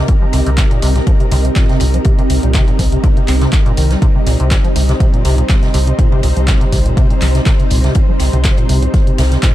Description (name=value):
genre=acid house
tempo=122 BPM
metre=4/4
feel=swing 54% on 16ths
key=C minor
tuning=A4 = 438 Hz
part: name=string machine, full ensemble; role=sustained chords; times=0.0-9.5 s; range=G3 to C5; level=-22 LUFS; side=equal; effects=ensemble chorus, sidechain pumping
part: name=deep acid bass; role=riff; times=0.0-9.5 s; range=Bb2 to C4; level=-20 LUFS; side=equal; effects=lush chorus
part: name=round analog bass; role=bass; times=0.0-9.4 s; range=C2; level=-14 LUFS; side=equal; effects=sidechain pumping
part: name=ethereal airy pad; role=texture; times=0.0-9.5 s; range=C4 to Bb5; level=-23 LUFS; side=right 2 dB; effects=ensemble chorus, built-in reverb, sidechain pumping
part: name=electronic kick drum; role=drums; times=0.1-9.5 s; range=none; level=-13 LUFS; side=equal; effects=none
part: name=open jazz drum kit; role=drums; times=0.1-9.5 s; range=ride cymbal, snare drum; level=-30 LUFS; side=left 2 dB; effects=high-pass filter on cymbals, high-pass filter on snare, high-pass filter on room
part: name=punchy analog drum machine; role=drums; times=0.1-9.5 s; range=handclaps, hi-hat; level=-23 LUFS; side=equal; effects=none
room=digital ambience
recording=dark, warm production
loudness=-10 LUFS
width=side -14 dB against mid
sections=0.0-9.5 A section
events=none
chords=0.0 Cm7